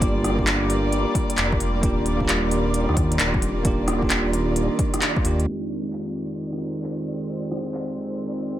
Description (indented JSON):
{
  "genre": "future garage",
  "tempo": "132 BPM",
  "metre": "4/4",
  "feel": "swing 65% on 16ths",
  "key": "F dorian",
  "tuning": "A4 = 440 Hz",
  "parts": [
    { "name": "bell-like tine electric piano", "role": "accompaniment", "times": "0.0-8.6 s", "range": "F2 to G4", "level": "-27 LUFS", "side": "right 2 dB", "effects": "sidechain pumping, digital delay" },
    { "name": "warm chamber string section", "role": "sustained chords", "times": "0.0-8.6 s", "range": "Eb3 to D5", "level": "-28 LUFS", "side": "left 1 dB", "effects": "vintage 12-bit sampler grit, sidechain pumping" },
    { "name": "swelling detuned saw bass", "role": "bass", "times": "0.0-5.5 s", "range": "Eb1 to Eb2", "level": "-24 LUFS", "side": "equal", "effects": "none" },
    { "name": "electronic kick drum", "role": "drums", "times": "0.0-5.2 s", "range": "none", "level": "-25 LUFS", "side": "equal", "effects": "overdrive" },
    { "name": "organic electronic drum kit", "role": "drums", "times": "0.0-7.9 s", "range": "handclaps, hi-hat, rim click", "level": "-26 LUFS", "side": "equal", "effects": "overdrive" },
    { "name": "flickering grainy texture", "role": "texture", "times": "0.0-8.6 s", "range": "D5", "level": "-36 LUFS", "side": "right 1 dB", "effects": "built-in reverb" }
  ],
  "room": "light reverb",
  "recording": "low-pass filter",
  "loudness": "-20 LUFS",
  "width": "side -12 dB against mid",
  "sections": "0.0-5.5 A section; 5.5-8.6 B section",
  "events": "filter sweep 5.5-8.6",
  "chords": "0.0 Gm7; 1.8 Ebmaj9; 5.5 Fm7"
}